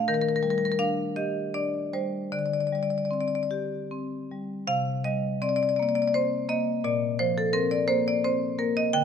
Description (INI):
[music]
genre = classical, contemporary piece for solo marimba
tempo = 50-58 BPM (dotted quarters)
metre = 6/8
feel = rubato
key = unclear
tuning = A4 = 439 Hz
[part]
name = marimba with medium hard mallets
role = solo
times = 0.0-9.0 s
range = Bb2 to G5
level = -24 LUFS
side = left 2 dB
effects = none
[sound]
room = moderate recital hall reverb, RT60 1.5 s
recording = close, detailed microphones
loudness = -24 LUFS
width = side -7 dB against mid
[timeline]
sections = 0.0-4.7 A section; 4.7-9.0 B section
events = none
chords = 0.1 Ebmaj7; 2.3 D7sus4; 4.7 C5; 6.8 Bbsus2